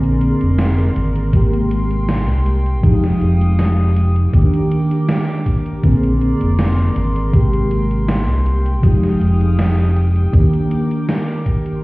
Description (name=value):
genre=vaporwave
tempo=80 BPM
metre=4/4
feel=straight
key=unclear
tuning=A4 = 440 Hz
part: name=mellow FM electric piano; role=accompaniment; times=0.0-11.8 s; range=C3 to Ab4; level=-18 LUFS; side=equal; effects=ensemble chorus, analog delay
part: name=rich chamber string section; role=sustained chords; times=0.0-11.8 s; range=Ab3 to Eb6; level=-29 LUFS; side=equal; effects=none
part: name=fingered electric bass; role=bass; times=0.0-10.5 s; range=F1 to Eb2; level=-16 LUFS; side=equal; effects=none
part: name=gated 80s digital drum machine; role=drums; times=0.0-11.8 s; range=hi-hat, snare drum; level=-23 LUFS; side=equal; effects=gated reverb, gated reverb snare
part: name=electronic kick drum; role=drums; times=1.3-11.6 s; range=none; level=-14 LUFS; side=equal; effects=none
room=light reverb, digital ambience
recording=heard muffled through a wall, stone room reverb, cassette tape, EQ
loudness=-13 LUFS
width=side -20 dB against mid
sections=0.0-11.8 A section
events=none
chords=0.0 Bb9; 1.3 Abmaj9; 2.8 Fm9; 4.3 Ebmaj7; 5.8 Bb9; 7.3 Abmaj9; 8.8 Fm9; 10.3 Ebmaj7